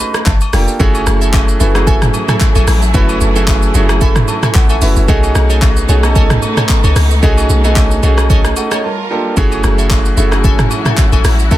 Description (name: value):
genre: amapiano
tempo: 112 BPM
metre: 4/4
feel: swing 55% on 16ths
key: F# dorian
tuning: A4 = 444 Hz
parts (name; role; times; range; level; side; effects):
- clear grand piano; accompaniment; 0.0-11.6 s; A3 to C#6; -17 LUFS; right 3 dB; none
- deep house drum kit; drums; 0.1-11.6 s; handclaps, hi-hat, kick drum, rim click, shaker, toms; -13 LUFS; equal; none
- deep log drum bass; bass; 0.3-11.6 s; F1 to C#2; -13 LUFS; equal; none
- woodblock and agogo bells; percussion; 0.3-11.2 s; none; -26 LUFS; left 8 dB; none
- warm symphonic string section; sustained chords; 0.8-11.6 s; F#3 to Bb4; -22 LUFS; equal; none
- glassy wavetable pluck; stabs; 0.8-11.6 s; A4 to G#5; -22 LUFS; right 2 dB; chorus, digital delay
room: digital ambience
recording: dense, heavily limited modern master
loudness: -9 LUFS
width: side -14 dB against mid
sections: 0.0-11.6 A section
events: grand piano fill 0.0-0.8, 3.5-5.1, 8.6-9.4; break 8.8-9.4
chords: 0.3 Gm9; 0.8 F#m9; 5.1 B13; 8.8 Gm9; 9.4 F#m9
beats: 0.26 | 0.80 1.34 1.87 2.41 | 2.94 3.48 4.01 4.55 | 5.09 5.62 6.16 6.69 | 7.23 7.76 8.30 8.84 | 9.37 9.91 10.44 10.98 | 11.51